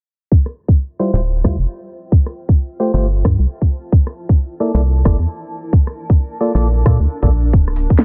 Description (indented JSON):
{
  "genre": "UK garage, two-step garage",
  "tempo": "133 BPM",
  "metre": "4/4",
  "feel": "swing 63% on 16ths",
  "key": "D minor",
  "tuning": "A4 = 437 Hz",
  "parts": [
    { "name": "electronic kick drum", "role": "drums", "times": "0.3-8.0 s", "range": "none", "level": "-14 LUFS", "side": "equal", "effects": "none" },
    { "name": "granular cloud pad", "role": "texture", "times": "1.8-8.0 s", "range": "D4 to A5", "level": "-34 LUFS", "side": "equal", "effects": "built-in reverb, sidechain pumping" },
    { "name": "garage drum kit", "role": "drums", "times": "0.5-8.0 s", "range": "hi-hat, rim click, snare drum", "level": "-22 LUFS", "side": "equal", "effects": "none" },
    { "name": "percussive organ stab", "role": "stabs", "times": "1.0-7.3 s", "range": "G3 to D5", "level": "-23 LUFS", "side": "equal", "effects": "lush chorus, cassette tape, digital delay" },
    { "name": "organ-like FM bass", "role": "bass", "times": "1.1-7.9 s", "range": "D1 to Bb2", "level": "-17 LUFS", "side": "equal", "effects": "tube saturation" }
  ],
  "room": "digital ambience",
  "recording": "dense, heavily limited modern master, low-pass filter",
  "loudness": "-16 LUFS",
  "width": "mono",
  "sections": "0.3-8.0 A section",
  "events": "fade-in on ambient pad 0.3-8.0; filter sweep on FM bass 0.3-8.0; filter sweep 0.3-8.0",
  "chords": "0.3 Dm11; 1.9 G9sus4; 3.7 C13; 5.5 Bbmaj7; 7.5 Dm11"
}